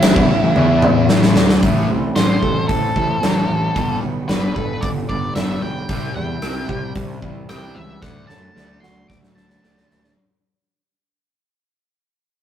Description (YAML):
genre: quiet-loud alternative rock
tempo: 112 BPM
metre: 4/4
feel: straight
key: A dorian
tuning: A4 = 440 Hz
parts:
  - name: octave-fuzz lead guitar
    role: melody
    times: 0.0-10.1 s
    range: E4 to D6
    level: -24 LUFS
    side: equal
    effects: distortion
  - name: fuzz guitar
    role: riff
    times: 0.0-10.1 s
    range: G2 to E4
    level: -26 LUFS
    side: equal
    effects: distortion
  - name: fuzz picked electric bass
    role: bass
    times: 0.0-10.1 s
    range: G1 to F#2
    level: -22 LUFS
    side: right 1 dB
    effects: overdrive
  - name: big rock drum kit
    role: drums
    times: 0.0-10.2 s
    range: crash cymbal, hi-hat, kick drum, rim click, snare drum, toms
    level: -18 LUFS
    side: left 1 dB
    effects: none
  - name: picked steel-string acoustic guitar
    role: arpeggios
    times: 1.6-10.2 s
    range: A2 to A4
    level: -27 LUFS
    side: right 4 dB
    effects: none
room: light reverb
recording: rough rehearsal-room recording, tube saturation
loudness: -15 LUFS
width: side -9 dB against mid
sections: 0.0-1.6 A section; 1.6-10.2 B section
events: drum fill 0.6-1.6, 8.0-10.2; fade-out 1.6-10.2; lead electric guitar solo 1.6-10.2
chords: 0.0 A5; 0.6 E5; 1.1 A5; 1.6 Am; 3.8 Gadd9; 5.9 C; 8.0 D